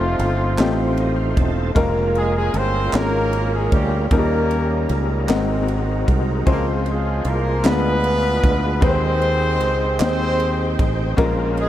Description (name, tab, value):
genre	slow gospel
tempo	51 BPM (dotted quarters)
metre	6/8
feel	straight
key	Ab major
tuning	A4 = 440 Hz
part	warm horn section	melody	0.0-11.7 s	F3 to C5	-23 LUFS	equal	none
part	bright concert grand piano	accompaniment	0.0-11.7 s	Ab2 to G5	-24 LUFS	left 3 dB	none
part	overdriven tonewheel organ	sustained chords	0.0-11.7 s	G3 to A5	-26 LUFS	right 2 dB	slow rotary speaker, chorus vibrato
part	fingered electric bass	bass	0.0-11.7 s	Fb1 to Eb2	-22 LUFS	equal	none
part	crisp fusion drum kit	drums	0.2-11.7 s	kick drum, ride cymbal, snare drum	-23 LUFS	equal	none
part	group handclap	percussion	0.6-10.4 s	none	-32 LUFS	right 4 dB	none
room	moderate huge ambient reverb, RT60 6.6 s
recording	dreamy mix soaked in reverb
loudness	-17 LUFS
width	side -12 dB against mid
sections	0.0-11.7 A section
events	tonewheel organ fill 0.6-1.8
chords	0.0 F7; 1.8 Bbm7/F; 4.1 Eb7; 5.3 Ab9; 6.5 Dbmaj7; 7.6 Ddim7; 8.8 Abmaj7; 11.2 Bbm7